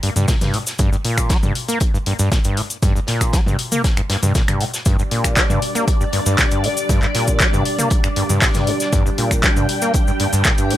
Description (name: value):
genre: acid house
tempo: 118 BPM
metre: 4/4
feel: straight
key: G minor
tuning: A4 = 438 Hz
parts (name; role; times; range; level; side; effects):
- overdriven acid bass; riff; 0.0-10.8 s; G2 to Bb3; -20 LUFS; equal; analog chorus, cassette tape, sidechain pumping, ping-pong delay
- punchy analog drum machine; drums; 0.0-10.8 s; finger snaps, handclaps, hi-hat, toms; -22 LUFS; left 1 dB; overdrive
- warm soul drum kit; drums; 0.0-10.8 s; hi-hat, snare drum; -30 LUFS; left 2 dB; high-pass filter on hats, high-pass filter on snare, high-pass filter on room
- cabasa; percussion; 0.2-10.7 s; none; -27 LUFS; left 2 dB; none
- electronic kick drum; drums; 0.3-10.6 s; none; -18 LUFS; equal; overdrive
- string machine, full ensemble; sustained chords; 4.9-10.8 s; G3 to G5; -23 LUFS; equal; ensemble chorus, sidechain pumping
room: light reverb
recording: none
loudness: -15 LUFS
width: side -13 dB against mid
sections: 0.0-10.8 A section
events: none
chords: 0.0 G5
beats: 0.28 | 0.79 1.30 1.81 2.32 | 2.83 3.33 3.84 4.35 | 4.86 5.37 5.88 6.38 | 6.89 7.40 7.91 8.42 | 8.93 9.44 9.94 10.45